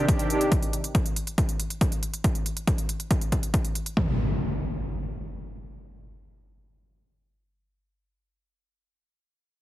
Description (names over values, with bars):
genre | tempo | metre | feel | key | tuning
uplifting trance | 139 BPM | 4/4 | straight | C minor | A4 = 440 Hz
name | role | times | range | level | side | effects
filtered supersaw swell | sustained chords | 0.0-0.5 s | C3 to G4 | -25 LUFS | right 1 dB | sidechain pumping
big-room dance drum kit | drums | 0.1-4.1 s | kick drum, toms | -24 LUFS | equal | overdrive
electronic hi-hat | drums | 0.1-3.9 s | none | -34 LUFS | right 2 dB | overdrive
impact | sound effects | 4.0-8.4 s | none | -30 LUFS | left 1 dB | none
room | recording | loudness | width
light reverb | heavily compressed radio sound, multiband compression | -24 LUFS | side -15 dB against mid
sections
0.0-4.0 A section; 4.0-7.4 B section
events
none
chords
0.0 Cmadd9; 4.0 N.C.